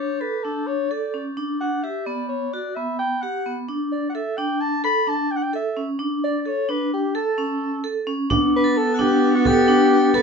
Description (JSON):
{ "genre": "contemporary instrumental, chamber music in an uneven meter", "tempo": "260 BPM (eighths)", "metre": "5/8", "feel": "straight", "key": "A mixolydian", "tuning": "A4 = 440 Hz", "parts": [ { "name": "dark soprano saxophone", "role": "melody", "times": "0.0-10.2 s", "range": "F#4 to B5", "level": "-23 LUFS", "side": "left 3 dB", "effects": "none" }, { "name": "vibraphone with hard mallets", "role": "arpeggios", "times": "0.0-10.2 s", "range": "B3 to A4", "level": "-23 LUFS", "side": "right 1 dB", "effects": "none" }, { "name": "rich viola", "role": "second line", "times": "8.3-10.2 s", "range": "B3", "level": "-20 LUFS", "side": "right 2 dB", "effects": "none" }, { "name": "frame drum", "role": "percussion", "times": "8.3-10.2 s", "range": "none", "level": "-27 LUFS", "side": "right 3 dB", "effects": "none" }, { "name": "crotales", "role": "texture", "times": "8.6-10.2 s", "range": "F#6 to C#7", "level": "-33 LUFS", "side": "equal", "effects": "none" } ], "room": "moderate studio ambience, RT60 0.4 s", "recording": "nothing above 7.9 kHz", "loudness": "-19 LUFS", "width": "side -5 dB against mid", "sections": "0.0-8.3 A section; 8.3-10.2 B section", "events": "none", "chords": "0.0 Asus4; 1.4 Bmadd9; 2.5 Gmaj7; 3.7 Asus4; 6.0 D5; 7.2 A; 8.3 A9sus4" }